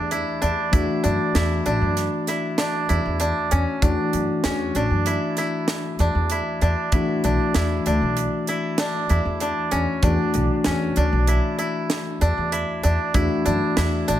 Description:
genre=progressive instrumental, band music in an uneven meter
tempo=97 BPM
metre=5/4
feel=straight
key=unclear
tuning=A4 = 441 Hz
part: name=bell-like tine electric piano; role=accompaniment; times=0.0-14.2 s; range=E3 to G4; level=-26 LUFS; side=left 3 dB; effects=none
part: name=koto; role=arpeggios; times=0.0-14.2 s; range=C#4 to E4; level=-24 LUFS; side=right 1 dB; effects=ping-pong delay
part: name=upright bass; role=bass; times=0.0-14.2 s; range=A1 to F#2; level=-23 LUFS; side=equal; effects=none
part: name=crisp fusion drum kit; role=drums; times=0.1-14.2 s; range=hi-hat, kick drum, snare drum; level=-25 LUFS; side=right 1 dB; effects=none
room=light reverb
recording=none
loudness=-19 LUFS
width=side -12 dB against mid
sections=0.0-14.2 A section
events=none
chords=0.0 Em7; 0.7 Dmaj9/A; 6.9 E5; 13.1 Dadd9

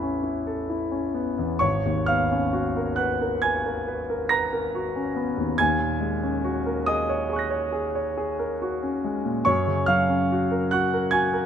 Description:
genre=classical, impressionist solo piano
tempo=43-49 BPM (dotted quarters)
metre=9/8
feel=rubato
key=unclear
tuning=A4 = 440 Hz
part: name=clear concert grand piano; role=solo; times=0.0-11.5 s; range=Ab1 to Bb6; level=-22 LUFS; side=equal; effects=none
room=moderate concert hall reverb, RT60 1.9 s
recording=close, detailed microphones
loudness=-22 LUFS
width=side -8 dB against mid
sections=0.0-11.5 A section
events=none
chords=0.0 Aadd9; 1.6 Abm11; 5.6 Ebm7; 9.5 Gbmaj7

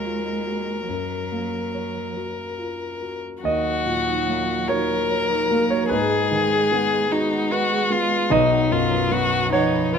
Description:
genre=neoclassical piano and strings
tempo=48 BPM (dotted quarters)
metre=6/8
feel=uneven beats, rubato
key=Eb minor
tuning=A4 = 440 Hz
part: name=muted violin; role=melody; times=0.0-10.0 s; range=Eb4 to Bb4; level=-23 LUFS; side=left 4 dB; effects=none
part: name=muted cello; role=second line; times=0.0-10.0 s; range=D#3 to Ab3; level=-30 LUFS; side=right 6 dB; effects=none
part: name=warm concert grand piano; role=accompaniment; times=0.0-10.0 s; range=B1 to F#5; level=-24 LUFS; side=equal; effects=none
part: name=marimba with medium mallets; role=arpeggios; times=3.4-10.0 s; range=Eb4 to B5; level=-30 LUFS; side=right 5 dB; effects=none
room=light reverb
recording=minimal, uncompressed stereo recording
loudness=-19 LUFS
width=side -7 dB against mid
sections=0.0-3.4 A section; 3.4-10.0 B section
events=none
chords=0.0 Ebm; 0.9 Gb; 3.4 Ebm7; 5.9 Abm7; 8.3 B

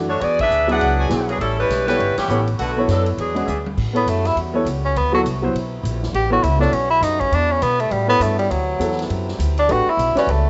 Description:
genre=jazz, big band swing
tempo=203 BPM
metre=4/4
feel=swing 60% on 8ths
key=A mixolydian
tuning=A4 = 440 Hz
part: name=clear upright piano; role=accompaniment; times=0.0-10.3 s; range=F#3 to D5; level=-25 LUFS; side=equal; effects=cassette tape
part: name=upright bass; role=bass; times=0.0-10.5 s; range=G1 to B2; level=-25 LUFS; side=equal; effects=none
part: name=bright saxophone section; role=melody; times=0.1-3.6 s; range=D3 to F#5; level=-22 LUFS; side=equal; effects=none
part: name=swinging big-band drum kit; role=drums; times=0.2-10.4 s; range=crash cymbal, hi-hat, kick drum, ride cymbal, snare drum, toms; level=-36 LUFS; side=equal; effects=cassette tape
part: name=warm trumpet section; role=stabs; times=1.0-3.6 s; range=D4 to G#5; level=-33 LUFS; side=equal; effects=cassette tape
part: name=bright trombone section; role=sustained chords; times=3.8-10.5 s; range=C3 to F#4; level=-36 LUFS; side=equal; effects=cassette tape
part: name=warm tenor saxophone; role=melody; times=4.0-10.5 s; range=F#3 to G4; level=-21 LUFS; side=equal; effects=none
room=moderate spring reverb, RT60 1.6 s, studio reverb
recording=home recording on cassette, nothing above 7.9 kHz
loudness=-19 LUFS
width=mono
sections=0.0-3.8 A section; 3.8-10.5 B section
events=band accent 0.4, 2.1; drum fill 3.5; tenor saxophone solo 3.8-10.5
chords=0.2 E13; 1.4 A13; 2.6 Bm7; 3.2 E9; 3.8 A13; 5.0 D13; 6.1 A13; 7.3 Em7; 7.9 A13; 8.5 D13; 9.7 A13

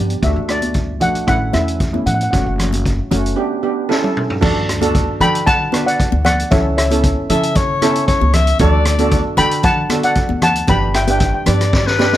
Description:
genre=calypso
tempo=115 BPM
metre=4/4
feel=straight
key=D major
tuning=A4 = 438 Hz
part: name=steel pan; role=melody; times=0.0-11.4 s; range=C#5 to B5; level=-18 LUFS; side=left 1 dB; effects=none
part: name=steel pan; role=accompaniment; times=0.0-12.2 s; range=A3 to B4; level=-20 LUFS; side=right 3 dB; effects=none
part: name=upright bass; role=bass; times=0.0-12.2 s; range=F#1 to D3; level=-19 LUFS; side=equal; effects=none
part: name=street-band drum kit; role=drums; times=0.1-12.2 s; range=crash cymbal, hi-hat, kick drum, rim click, snare drum, toms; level=-19 LUFS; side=equal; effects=none
part: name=congas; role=percussion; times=0.6-12.1 s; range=none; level=-22 LUFS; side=left 1 dB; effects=none
part: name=warm alto saxophone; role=second line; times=7.3-12.2 s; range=B4 to E5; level=-18 LUFS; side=left 5 dB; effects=none
room=little or no reverb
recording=close, detailed microphones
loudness=-13 LUFS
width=side -13 dB against mid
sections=0.0-4.4 A section; 4.4-12.2 B section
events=drum fill 3.9-4.4, 11.7-12.2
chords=0.2 D; 1.3 A; 2.3 F#m; 3.4 G; 3.9 A; 4.4 D; 6.5 A/C#; 8.6 D; 10.7 G

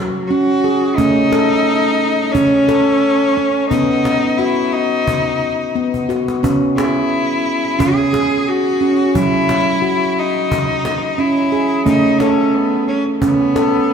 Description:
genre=world meditative, meditative tuned percussion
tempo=88 BPM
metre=4/4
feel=swing 55% on 16ths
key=unclear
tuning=A4 = 443 Hz
part: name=clear cello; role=melody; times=0.0-13.9 s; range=F#3 to G#4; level=-18 LUFS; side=left 2 dB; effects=ping-pong delay
part: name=handpan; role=arpeggios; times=0.0-13.9 s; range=F#3 to A4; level=-15 LUFS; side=right 1 dB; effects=none
part: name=cajon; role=percussion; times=1.0-13.7 s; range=none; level=-24 LUFS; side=equal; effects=none
room=wet concert hall reverb, RT60 2.1 s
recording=none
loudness=-13 LUFS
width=side -7 dB against mid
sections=0.0-13.9 A section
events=drum fill 5.9-6.4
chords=0.0 F#5; 1.0 A; 3.7 B; 6.4 C#m; 9.1 F#5; 11.9 A

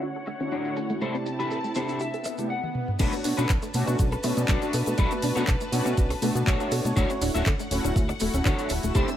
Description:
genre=nu-disco, nu disco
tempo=121 BPM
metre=4/4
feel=swing 53% on 16ths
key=B minor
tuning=A4 = 441 Hz
part: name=mellow synth brass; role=accompaniment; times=0.0-9.2 s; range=C3 to C#5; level=-31 LUFS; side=equal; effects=chorus, digital delay
part: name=warm studio string section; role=sustained chords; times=0.0-9.2 s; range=D3 to E6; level=-35 LUFS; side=equal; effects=sidechain pumping
part: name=wide unison pluck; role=arpeggios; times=0.0-9.2 s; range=A3 to E5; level=-33 LUFS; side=right 1 dB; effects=sidechain pumping, dub echo
part: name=electric guitar at the edge of break-up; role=riff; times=0.0-9.1 s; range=D4 to F#5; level=-32 LUFS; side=left 3 dB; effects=analog chorus, digital delay
part: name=house drum kit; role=drums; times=0.0-9.2 s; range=crash cymbal, handclaps, hi-hat, ride cymbal, shaker, toms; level=-33 LUFS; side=equal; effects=none
part: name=maracas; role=percussion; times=0.0-9.2 s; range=none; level=-41 LUFS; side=right 4 dB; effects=none
part: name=swell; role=sound effects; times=2.2-3.0 s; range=none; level=-38 LUFS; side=right 3 dB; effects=none
part: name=fat analog bass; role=bass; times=3.0-9.0 s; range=D1 to B2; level=-28 LUFS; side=equal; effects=none
part: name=electronic kick drum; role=drums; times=3.0-9.1 s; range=none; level=-25 LUFS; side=equal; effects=overdrive
room=light reverb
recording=low-pass filter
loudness=-23 LUFS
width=side -11 dB against mid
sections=0.0-3.0 A section; 3.0-9.2 B section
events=filter sweep on clean electric guitar 0.0-3.0; filter sweep on synth arpeggio sound 0.0-3.0; clean electric guitar fill 1.5-3.0; swell 2.2-3.0; drum fill 2.6-3.0; drop 3.0-9.2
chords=0.0 Dmaj7; 1.0 C6; 3.0 Bm7; 7.0 Dmaj7

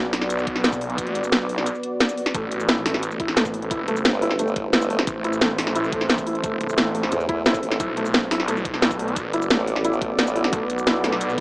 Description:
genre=dark technical drum and bass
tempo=176 BPM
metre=4/4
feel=straight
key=A minor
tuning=A4 = 440 Hz
part: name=deep dark ambient pad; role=sustained chords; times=0.0-11.4 s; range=A3 to D5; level=-27 LUFS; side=equal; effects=chorus, built-in reverb, sidechain pumping
part: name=snarling distorted saw bass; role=bass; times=0.0-11.4 s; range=A1 to B1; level=-27 LUFS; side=equal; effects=distortion, tube saturation
part: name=drum and bass drum kit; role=drums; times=0.1-11.4 s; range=hi-hat, shaker, snare drum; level=-21 LUFS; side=equal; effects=none
part: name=electronic kick drum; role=drums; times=0.5-11.4 s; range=none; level=-32 LUFS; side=equal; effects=none
part: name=felt-muted upright piano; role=arpeggios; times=2.3-11.4 s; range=A3 to E4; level=-27 LUFS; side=equal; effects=sidechain pumping, tape echo
part: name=formant-sweep wobble bass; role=bass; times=4.0-5.1, 7.1-10.5 s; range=G1 to E2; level=-25 LUFS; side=equal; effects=chorus
room=light reverb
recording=small speaker sound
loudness=-20 LUFS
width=side -23 dB against mid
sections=0.0-11.4 A section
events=none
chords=0.0 Bm; 2.3 Amadd9; 7.8 Bm

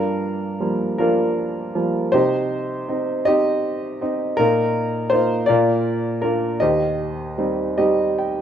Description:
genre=classical, lyrical solo piano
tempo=53 BPM (dotted quarters)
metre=6/8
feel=rubato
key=Eb major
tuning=A4 = 437 Hz
part: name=clear concert grand piano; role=solo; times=0.0-8.4 s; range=Eb2 to G5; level=-18 LUFS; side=equal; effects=none
room=moderate recital hall reverb, RT60 1.2 s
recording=minimal, uncompressed stereo recording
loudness=-18 LUFS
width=side -9 dB against mid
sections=0.0-8.4 A section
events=grand piano fill 7.8-8.4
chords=0.0 Gm7; 2.1 Cm; 4.4 Bbsus4; 5.5 Bb; 6.6 Eb6

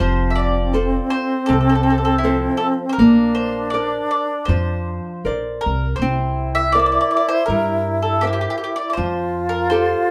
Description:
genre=italian folk, Italian serenade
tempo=80 BPM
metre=4/4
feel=swing 54% on 8ths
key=F major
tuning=A4 = 440 Hz
part: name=mandolin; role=melody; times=0.0-10.1 s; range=E4 to E5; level=-24 LUFS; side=equal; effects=none
part: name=alto flute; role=second line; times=0.0-10.1 s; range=C4 to F4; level=-24 LUFS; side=equal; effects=none
part: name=nylon-string guitar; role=accompaniment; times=0.0-10.1 s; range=C3 to E5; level=-24 LUFS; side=equal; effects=none
part: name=upright bass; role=bass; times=0.0-9.9 s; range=F1 to G2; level=-25 LUFS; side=equal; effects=none
room=wet studio reverb, RT60 0.6 s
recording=band playing live in one room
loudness=-19 LUFS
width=mono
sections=0.0-10.1 A section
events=none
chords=0.0 F; 3.0 Bbadd9; 6.0 C7; 9.0 Fadd9

